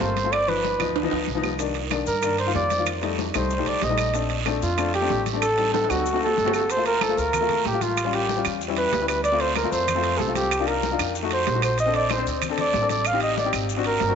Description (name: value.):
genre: Afro-Cuban jazz.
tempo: 188 BPM.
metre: 4/4.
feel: straight.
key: Bb major, G minor from 6.7 s.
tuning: A4 = 439 Hz.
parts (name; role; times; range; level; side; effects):
warm flugelhorn; melody; 0.0-14.2 s; F4 to F5; -24 LUFS; right 1 dB; none.
warm baby grand piano; accompaniment; 0.0-14.2 s; Eb3 to C5; -27 LUFS; left 9 dB; none.
upright bass; bass; 0.0-14.2 s; G1 to G2; -30 LUFS; right 2 dB; none.
congas; percussion; 0.0-14.2 s; none; -36 LUFS; left 11 dB; none.
guiro; percussion; 0.0-14.2 s; none; -34 LUFS; right 14 dB; none.
timbales; percussion; 0.0-14.2 s; none; -32 LUFS; right 14 dB; none.
claves; percussion; 0.3-13.7 s; none; -33 LUFS; right 12 dB; none.
maracas; percussion; 1.6-14.2 s; none; -41 LUFS; left 13 dB; none.
room: wet plate reverb, RT60 2.4 s.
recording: 1960s-style stereo with parts hard left and right, nothing above 7.9 kHz.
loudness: -21 LUFS.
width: side -7 dB against mid.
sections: 0.0-6.7 A section; 6.7-14.2 B section.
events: drum fill 1.0-1.6, 5.7-6.7.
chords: 0.3 G7b13; 1.6 Cm9; 2.9 F9; 4.1 Bbmaj9; 5.4 Am7b5; 6.1 D7; 6.7 Gm7; 8.0 A7b13; 9.2 Dm7; 10.5 Cm11; 11.2 F7b9; 11.8 Bbmaj7; 13.1 Am7b5.